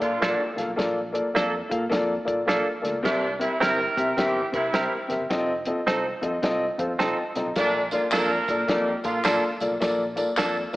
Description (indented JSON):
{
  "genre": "uptempo 1960s-style soul",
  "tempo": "106 BPM",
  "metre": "4/4",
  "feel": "swing 63% on 8ths",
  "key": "Bb major",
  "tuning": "A4 = 437 Hz",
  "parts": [
    { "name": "warm horn section", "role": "second line", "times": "0.0-9.6 s", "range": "Bb2 to Bb4", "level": "-27 LUFS", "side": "right 2 dB", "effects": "none" },
    { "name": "warm upright piano", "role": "accompaniment", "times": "0.0-10.8 s", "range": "Bb3 to Bb5", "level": "-25 LUFS", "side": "left 1 dB", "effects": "none" },
    { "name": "fingered electric bass", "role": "bass", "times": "0.0-10.8 s", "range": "F1 to C3", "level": "-39 LUFS", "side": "equal", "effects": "none" },
    { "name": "warm soul drum kit", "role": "drums", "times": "0.0-10.8 s", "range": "hi-hat, kick drum, snare drum", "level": "-31 LUFS", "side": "equal", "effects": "none" },
    { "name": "direct-recorded clean electric guitar", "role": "stabs", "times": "0.2-10.6 s", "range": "Bb3 to Bb4", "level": "-27 LUFS", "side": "right 2 dB", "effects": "vibrato effect" },
    { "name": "tambourine and handclaps", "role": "percussion", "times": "7.6-10.8 s", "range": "none", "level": "-34 LUFS", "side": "equal", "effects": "none" }
  ],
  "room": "moderate concert hall reverb, RT60 2.0 s",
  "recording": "AM radio sound",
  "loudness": "-22 LUFS",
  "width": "side -18 dB against mid",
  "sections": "0.0-10.8 A section",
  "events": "upright piano fill 6.4-7.6",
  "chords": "0.0 Bbmaj7; 3.1 C7; 5.3 F7; 7.6 Bbmaj7"
}